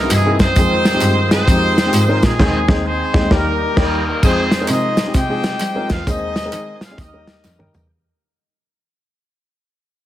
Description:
uptempo gospel; 131 BPM; 4/4; swing 63% on 8ths; A4 = 440 Hz
warm horn section; melody; 0.0-7.9 s; G3 to G5; -19 LUFS; equal
dark upright piano; accompaniment; 0.0-7.8 s; C3 to Eb5; -21 LUFS; left 1 dB
bright tonewheel organ; sustained chords; 0.0-7.9 s; Eb3 to D#5; -27 LUFS; right 2 dB
warm cello; bass; 0.0-7.9 s; Eb2 to G3; -20 LUFS; equal
warm soul drum kit; drums; 0.1-7.9 s; crash cymbal, hi-hat, kick drum, snare drum, toms; -17 LUFS; equal
handclaps and tambourine; percussion; 0.1-7.8 s; -30 LUFS; right 1 dB
little or no reverb; dense, heavily limited modern master; -13 LUFS; side -13 dB against mid
0.0-4.2 A section; 4.2-7.9 B section
band accent 2.4-4.2; fade-out 4.2-7.9; drum fill 7.4-7.9
0.0 C7alt; 0.6 Fm7; 2.4 Ab/Eb; 3.3 Eb; 4.2 Fm7; 6.1 Ab/Eb; 7.0 Eb
0.10 | 0.56 1.01 1.47 1.93 | 2.39 2.85 3.31 3.77 | 4.23 4.69 5.15 5.61 | 6.07 6.53 6.99 7.45

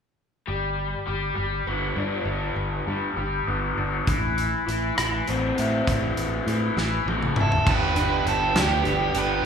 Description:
indie rock; 67 BPM (dotted quarters); 6/8; straight; A4 = 441 Hz
raw garage guitar; riff; 0.5-9.5 s; E3 to E4; -26 LUFS; left 2 dB; overdrive, phaser
fingered electric bass; bass; 0.5-9.4 s; F#1 to A2; -28 LUFS; equal
big rock drum kit; drums; 4.1-9.3 s; crash cymbal, hi-hat, kick drum, rim click, snare drum, toms; -26 LUFS; equal
octave-fuzz lead guitar; melody; 7.4-9.5 s; G4 to B4; -25 LUFS; right 4 dB; distortion
overdriven electric guitar; riff; 7.7-9.5 s; B3 to G4; -27 LUFS; right 9 dB
wet recital hall reverb, RT60 1.4 s; recorded in a church or concert hall; -22 LUFS; side -7 dB against mid
0.5-7.7 A section; 7.7-9.5 B section
drum fill 6.8-7.7
0.5 G; 4.1 Am; 7.7 G
| 0.47 1.37 | 2.27 3.17 | 4.07 4.97 | 5.87 6.77 | 7.66 8.56 | 9.45

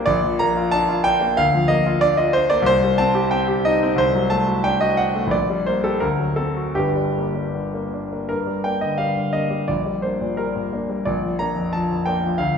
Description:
classical, romantic character piece for solo piano; 76-93 BPM; 2/4; rubato; G minor; A4 = 440 Hz
clear concert grand piano; solo; 0.0-12.6 s; G1 to Bb5; -18 LUFS; equal
wet recital hall reverb, RT60 1.4 s; recorded in a church or concert hall; -18 LUFS; side -6 dB against mid
0.0-8.3 A section; 8.3-12.6 B section
0.1 Bb; 1.4 Bb/D; 2.7 Cm; 4.0 D7/C; 5.3 Gm/Bb; 6.0 D7; 6.8 Gm; 9.7 Gm/Bb; 11.1 Bb
| 0.05 0.72 | 1.38 2.03 | 2.68 3.33 | 3.99 4.64 | 5.32 6.02 | 6.76 7.55 | 8.30 9.00 | 9.70 10.38 | 11.06 11.73 | 12.39

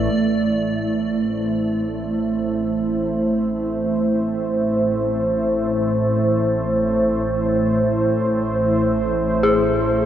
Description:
dark ambient drone; free time; A minor; A4 = 440 Hz
dark analog pad; sustained chords; 0.0-10.1 s; A3 to E5; -19 LUFS; right 1 dB; chorus
dark detuned synth bell; arpeggios; 0.0-0.2, 9.4-10.1 s; G#4; -19 LUFS; left 4 dB; chorus
organ-like drone; drone; 0.0-10.1 s; A1 to A2; -26 LUFS; left 1 dB; ensemble chorus, built-in reverb
wet huge ambient reverb, RT60 7.7 s; worn, warbling old tape, cassette tape, warbly pitch drift; -18 LUFS; side -10 dB against mid
0.1-10.1 A section
fade-in on synth drone 0.1-10.1
0.1 Am
free time

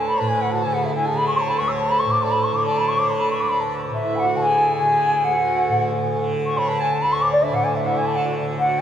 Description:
indian classical; 142 BPM; 4/4; straight; D raga yaman; A4 = 438 Hz
mellow bansuri; melody; 0.0-8.8 s; D5 to E6; -20 LUFS; left 1 dB
hand-pumped harmonium; second line; 0.0-8.8 s; D4 to D5; -27 LUFS; right 4 dB
tanpura; drone; 0.0-8.8 s; D2 to D3; -24 LUFS; right 1 dB
wet cathedral reverb, RT60 5.8 s; recorded in a church or concert hall; -18 LUFS; side -9 dB against mid
0.0-8.8 A section
speeding up 0.0-8.8
| 0.08 0.52 0.95 1.38 | 1.80 2.23 2.66 3.09 | 3.51 3.94 4.36 4.79 | 5.21 5.63 6.05 6.47 | 6.89 7.31 7.73 8.14 | 8.56

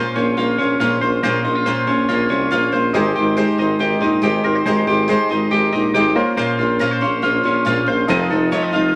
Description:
indie pop; 140 BPM; 4/4; straight; Bb dorian; A4 = 445 Hz
clear upright piano; accompaniment; 0.0-9.0 s; Db4 to C5; -29 LUFS; equal
picked steel-string acoustic guitar; accompaniment; 0.0-9.0 s; F2 to C5; -22 LUFS; equal
twelve-string electric guitar; arpeggios; 0.0-9.0 s; F3 to Eb5; -21 LUFS; equal
warm tuba; bass; 0.2-8.9 s; F1 to C2; -25 LUFS; equal
moderate studio reverb, RT60 0.7 s; -17 LUFS; mono
0.0-9.0 A section
0.0 Bbmadd9; 2.9 Abmaj7; 6.2 Bbmadd9; 8.1 F7
0.38 0.80 | 1.23 1.66 2.09 2.52 | 2.95 3.37 3.80 4.23 | 4.66 5.09 5.52 5.95 | 6.38 6.80 7.23 7.66 | 8.09 8.52 8.95

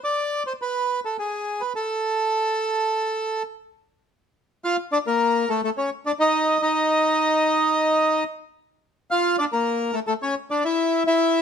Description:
tango; 106 BPM; 4/4; rubato; A4 = 439 Hz
bandoneon; solo; 0.0-11.4 s; A3 to F5; -20 LUFS; equal
moderate studio reverb, RT60 0.8 s; -20 LUFS; side -7 dB against mid
0.0-4.0 A section; 4.0-11.4 B section
0.0 N.C.; 4.0 Dm; 6.3 N.C.; 8.5 Aadd11; 10.8 N.C.
0.03 0.60 1.16 | 1.73 2.29 2.87 3.45 | 4.03 4.61 5.18 5.75 | 6.31 6.87 7.42 7.98 | 8.54 9.09 9.65 10.21 | 10.77 11.33

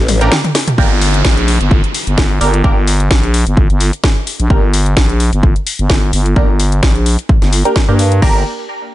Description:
bass house; 129 BPM; 4/4; swing 54% on 16ths; G minor; A4 = 440 Hz
house drum kit; drums; 0.1-8.3 s; crash cymbal, hi-hat, snare drum, toms; -17 LUFS; left 1 dB
band-passed chord stab; stabs; 0.2-8.4 s; Bb3 to Bb4; -19 LUFS; right 2 dB; phaser, cassette tape, sidechain pumping, tape echo
growling FM bass; bass; 0.8-8.4 s; G1 to G2; -13 LUFS; equal; overdrive, sidechain pumping
electronic kick drum; drums; 0.8-8.3 s; -12 LUFS; equal
downlifter; sound effects; 0.8-4.5 s; -22 LUFS; equal
little or no reverb; nothing above 10.9 kHz; -10 LUFS; side -15 dB against mid
0.8-8.2 A section
drum fill 0.1-0.8; filter sweep on FM bass 0.8-8.2; filter sweep on synth stab 0.8-8.2
0.0 Gm
0.32 | 0.78 1.25 1.71 2.18 | 2.64 3.11 3.57 4.04 | 4.50 4.97 5.43 5.90 | 6.36 6.83 7.29 7.76 | 8.22

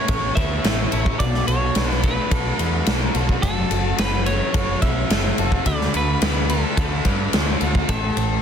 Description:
rock, shoegaze and dream pop; 108 BPM; 4/4; straight; D major; A4 = 440 Hz
twelve-string electric guitar; melody; 0.0-8.4 s; A4 to E5; -27 LUFS; right 2 dB; analog delay
direct-recorded clean electric guitar; arpeggios; 0.0-8.4 s; F#4 to B4; -33 LUFS; left 10 dB; lush chorus, analog delay
biting overdriven guitar; riff; 0.0-8.4 s; F#2 to F#4; -27 LUFS; right 13 dB; reverse reverb
overdriven electric guitar; riff; 0.0-8.4 s; B2 to C#5; -27 LUFS; left 12 dB; lush chorus
growling picked electric bass; bass; 0.1-8.4 s; F#1 to G2; -24 LUFS; equal; overdrive
huge arena drum kit; drums; 0.1-8.3 s; kick drum, ride cymbal, snare drum; -22 LUFS; equal
small room ambience; dense, heavily limited modern master; -18 LUFS; side -8 dB against mid
0.0-8.4 A section
0.0 Aadd9; 1.2 Bm7; 3.4 F#m; 5.7 D; 7.9 A
0.10 0.66 | 1.21 1.77 2.32 2.88 | 3.44 3.99 4.55 5.11 | 5.66 6.22 6.78 7.33 | 7.89

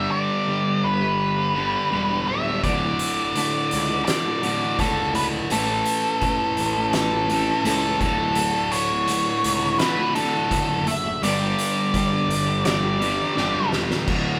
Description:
quiet-loud alternative rock; 84 BPM; 4/4; straight; D major; A4 = 440 Hz
octave-fuzz lead guitar; melody; 0.0-13.7 s; A4 to E5; -26 LUFS; equal; distortion
twelve-string electric guitar; arpeggios; 0.0-14.4 s; D2 to A4; -33 LUFS; equal
distorted electric guitar; riff; 0.0-14.4 s; D2 to A3; -27 LUFS; equal; distortion
fuzz picked electric bass; bass; 0.0-14.4 s; D1 to C#2; -32 LUFS; equal; overdrive
oversized low-tuned drum kit; drums; 2.6-14.2 s; crash cymbal, hi-hat, kick drum, snare drum; -30 LUFS; equal
moderate large studio reverb, RT60 0.9 s; band playing live in one room; -22 LUFS; mono
0.0-14.1 A section
half time 0.0-14.1; drum fill 13.4-14.1
0.0 G; 2.6 D; 5.5 A; 8.0 D; 11.2 G
0.47 1.19 1.91 | 2.63 3.35 4.07 4.79 | 5.50 6.22 6.94 7.66 | 8.37 9.09 9.80 10.51 | 11.23 11.94 12.65 13.37 | 14.08

